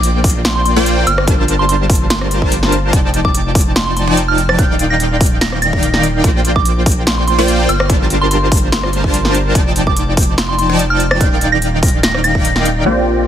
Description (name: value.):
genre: future bass.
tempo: 145 BPM.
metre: 4/4.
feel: swing 53% on 16ths, half-time.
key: unclear.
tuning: A4 = 440 Hz.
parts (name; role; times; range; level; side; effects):
soft synth bell; melody; 0.0-12.7 s; C6 to Bb6; -19 LUFS; right 2 dB; chorus, phaser, sidechain pumping, ping-pong delay.
supersaw stab; riff; 0.0-13.3 s; Eb3 to A5; -16 LUFS; equal; sidechain pumping, low-pass filter.
saturated sub bass; bass; 0.0-13.3 s; Eb1 to Bb1; -18 LUFS; equal; tube saturation, sidechain pumping.
big-room dance drum kit; drums; 0.0-12.9 s; crash cymbal, hi-hat, rim click, snare drum; -19 LUFS; equal; low-pass filter on snare, low-pass filter on hats, low-pass filter on cymbals, low-pass filter on room.
electronic kick drum; drums; 0.2-12.4 s; none; -14 LUFS; equal; none.
felt-muted upright piano; accompaniment; 12.8-13.3 s; F3 to G4; -22 LUFS; right 2 dB; sidechain pumping.
room: little or no reverb.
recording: heavily compressed radio sound, multiband compression.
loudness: -11 LUFS.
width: side -10 dB against mid.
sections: 0.0-12.9 A section.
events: drop 0.0-12.9.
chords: 0.0 Bb69; 1.1 Gm11; 2.9 F13; 4.6 Ebmaj9; 6.2 Bb69; 7.7 Gm11; 9.6 F13; 11.2 Ebmaj9.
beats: 0.03 0.45 0.86 | 1.27 1.69 2.10 2.52 | 2.93 3.34 3.76 4.17 | 4.59 5.00 5.41 5.83 | 6.24 6.66 7.07 7.48 | 7.90 8.31 8.72 9.14 | 9.55 9.96 10.38 10.79 | 11.21 11.62 12.03 12.45 | 12.86.